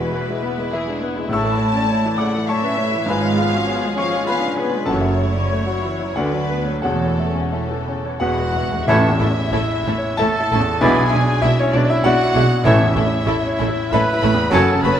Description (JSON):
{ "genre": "classical, romantic movement for piano and orchestra", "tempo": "86-104 BPM", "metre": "3/4", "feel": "rubato", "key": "A major", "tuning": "A4 = 440 Hz", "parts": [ { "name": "muted studio violin section", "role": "melody", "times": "0.0-15.0 s", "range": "C#4 to B5", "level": "-28 LUFS", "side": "left 3 dB", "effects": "none" }, { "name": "warm baby grand piano", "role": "melody", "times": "0.0-15.0 s", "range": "A1 to E6", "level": "-20 LUFS", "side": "left 1 dB", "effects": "none" }, { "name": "muted studio violin section", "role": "second line", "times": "0.0-14.9 s", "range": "E4 to A5", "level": "-26 LUFS", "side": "left 1 dB", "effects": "none" }, { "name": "muted studio viola section", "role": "accompaniment", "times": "0.0-14.9 s", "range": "C#3 to D4", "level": "-27 LUFS", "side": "equal", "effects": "none" }, { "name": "muted studio cello section", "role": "bass", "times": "0.0-14.9 s", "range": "D2 to B2", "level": "-26 LUFS", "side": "right 2 dB", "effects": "none" }, { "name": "muted studio double bass section", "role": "bass", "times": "0.0-14.9 s", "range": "E1 to D2", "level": "-25 LUFS", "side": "right 3 dB", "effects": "none" }, { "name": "timpani", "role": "percussion", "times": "0.0-0.4, 8.2-9.8, 12.6-13.5 s", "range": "E2 to A2", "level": "-26 LUFS", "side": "equal", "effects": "none" }, { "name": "warm trumpet", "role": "stabs", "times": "8.2-15.0 s", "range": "C#4 to B4", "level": "-24 LUFS", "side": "right 2 dB", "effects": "none" }, { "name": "mellow clarinet", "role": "second line", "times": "8.9-14.7 s", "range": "C#4 to E4", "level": "-28 LUFS", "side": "left 2 dB", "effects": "none" }, { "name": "silver concert flute", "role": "second line", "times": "8.9-14.8 s", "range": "F#5 to B5", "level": "-26 LUFS", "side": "left 2 dB", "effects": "none" }, { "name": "warm oboe", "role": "second line", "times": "8.9-14.7 s", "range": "C#5 to D5", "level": "-24 LUFS", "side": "right 3 dB", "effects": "none" }, { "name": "clear bassoon", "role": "accompaniment", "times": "8.9-14.7 s", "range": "E3 to F#3", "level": "-25 LUFS", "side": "right 2 dB", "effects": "none" }, { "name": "clear trombone section", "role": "sustained chords", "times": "8.9-14.7 s", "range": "C#3 to B3", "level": "-26 LUFS", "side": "right 2 dB", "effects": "none" }, { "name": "mellow French horn section", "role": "sustained chords", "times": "8.9-14.7 s", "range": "C#4 to F#4", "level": "-27 LUFS", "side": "left 4 dB", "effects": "none" } ], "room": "moderate scoring stage reverb, RT60 1.5 s", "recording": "close, detailed microphones", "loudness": "-16 LUFS", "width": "side -9 dB against mid", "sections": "0.0-8.9 A section; 8.9-15.0 B section", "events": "timpani fill 8.2-8.9", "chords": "0.0 E; 1.3 A; 3.1 C#7/G#; 4.9 F#m7; 6.2 Bm/D; 6.8 A/E; 8.2 E; 8.9 A; 10.8 E7/B; 12.7 A", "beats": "0.14 0.73 | 1.31 1.89 2.49 | 3.08 3.68 4.28 | 4.89 5.52 6.15 | 6.83 7.52 8.20 | 8.88 9.53 10.20 | 10.82 11.43 12.04 | 12.65 13.26 13.92 | 14.53" }